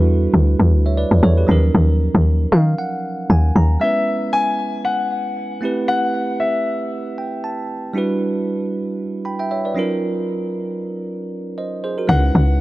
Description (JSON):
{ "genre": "amapiano", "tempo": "116 BPM", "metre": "4/4", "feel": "swing 55% on 16ths", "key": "unclear", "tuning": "A4 = 440 Hz", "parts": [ { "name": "bell-like tine electric piano", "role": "accompaniment", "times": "0.0-12.6 s", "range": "E#3 to B5", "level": "-22 LUFS", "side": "right 2 dB", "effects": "none" }, { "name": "tight log drum bass", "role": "bass", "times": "0.0-3.8, 12.1-12.6 s", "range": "C#2 to D#3", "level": "-13 LUFS", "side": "equal", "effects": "none" }, { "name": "warm grand piano", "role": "melody", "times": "3.8-7.7, 12.1-12.6 s", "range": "E5 to G#5", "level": "-20 LUFS", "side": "left 2 dB", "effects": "digital delay" } ], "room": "light reverb, small room reverb", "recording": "dark, warm production", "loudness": "-16 LUFS", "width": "side -18 dB against mid", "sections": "0.0-3.8 A section; 3.8-12.1 B section", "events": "drop 0.0-3.8; tine electric piano fill 2.3-3.8, 6.9-8.0", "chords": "0.0 Em7; 1.5 D#m7; 3.8 C#m7; 5.6 Am7; 8.0 Em7; 9.8 D#m7; 12.1 C#m7" }